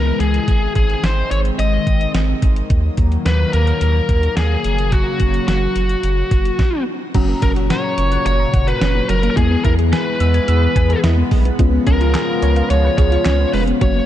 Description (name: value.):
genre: synth-pop.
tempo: 108 BPM.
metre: 4/4.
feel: straight.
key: unclear.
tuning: A4 = 441 Hz.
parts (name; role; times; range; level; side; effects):
biting lead guitar; melody; 0.0-14.1 s; F#4 to D#5; -21 LUFS; left 2 dB; overdrive, tape echo, shimmer reverb.
chorused pulse-width pad; sustained chords; 0.0-14.1 s; A#2 to E#4; -23 LUFS; left 1 dB; shimmer reverb.
round analog bass; bass; 0.0-14.0 s; E#1 to E2; -17 LUFS; equal; none.
clean 12-bit digital drum machine; drums; 0.2-13.9 s; crash cymbal, handclaps, hi-hat, kick drum, snare drum; -19 LUFS; equal; none.
mellow FM electric piano; accompaniment; 7.1-14.1 s; A#3 to A#5; -24 LUFS; left 5 dB; chorus, shimmer reverb.
soft round pluck; arpeggios; 7.1-14.1 s; F#3 to G#6; -24 LUFS; right 3 dB; chorus, tape echo, shimmer reverb.
room: light reverb, digital ambience.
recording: dark, warm production.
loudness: -14 LUFS.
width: side -12 dB against mid.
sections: 0.0-7.1 A section; 7.1-14.1 B section.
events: stop 6.6-7.1.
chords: 0.5 G#; 2.7 D#m; 4.6 F#; 9.4 E; 11.6 C#7.